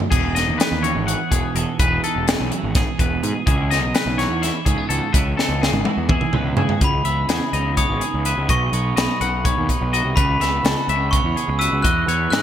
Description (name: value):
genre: math rock and midwest emo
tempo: 251 BPM (eighths)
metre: 7/8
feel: straight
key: unclear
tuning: A4 = 440 Hz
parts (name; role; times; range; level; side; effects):
- crisp fusion drum kit; drums; 0.0-12.4 s; crash cymbal, hi-hat, kick drum, snare drum, toms; -21 LUFS; equal; gated reverb
- twelve-string electric guitar; accompaniment; 0.1-12.4 s; E2 to G#4; -27 LUFS; right 8 dB; lush chorus
- twangy electric guitar; arpeggios; 0.1-12.4 s; F#4 to F#5; -24 LUFS; left 5 dB; wide subtle chorus, ping-pong delay
- fuzz picked electric bass; bass; 0.1-12.4 s; E1 to C#3; -23 LUFS; equal; overdrive
- glockenspiel with hard plastic mallets; melody; 6.8-12.4 s; B5 to F#6; -23 LUFS; equal; none
room: light reverb, small room ambience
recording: bright 1980s-style digital production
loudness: -17 LUFS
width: side -10 dB against mid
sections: 0.0-6.8 A section; 6.8-12.4 B section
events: drum fill 5.4-6.8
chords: 0.1 Emaj9; 3.5 C#m9; 8.5 Badd9; 10.2 A69/C#; 11.8 Emaj9